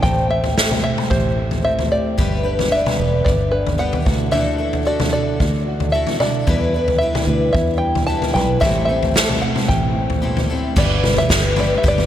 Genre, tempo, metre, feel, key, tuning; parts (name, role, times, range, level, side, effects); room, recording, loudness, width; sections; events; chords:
indie folk with a building arrangement; 112 BPM; 4/4; straight; G major; A4 = 441 Hz
open-back banjo; melody; 0.0-12.1 s; B4 to A5; -22 LUFS; equal; diffuse ambient delay
fingerpicked acoustic archtop guitar; accompaniment; 0.0-10.8 s; E2 to C5; -25 LUFS; equal
fingered electric bass; bass; 0.0-12.1 s; E1 to E2; -22 LUFS; equal
unplugged drum kit; drums; 0.0-12.1 s; crash cymbal, kick drum, snare drum, toms; -20 LUFS; equal
picked twelve-string acoustic guitar; accompaniment; 2.2-12.1 s; A2 to B4; -23 LUFS; left 3 dB
moderate cathedral reverb, RT60 5.1 s; dreamy mix soaked in reverb; -15 LUFS; side -11 dB against mid
0.0-10.8 A section; 10.8-12.1 B section
0.0 Am7; 2.2 G; 4.1 Dadd9; 6.5 Em7; 8.6 Am7; 10.8 G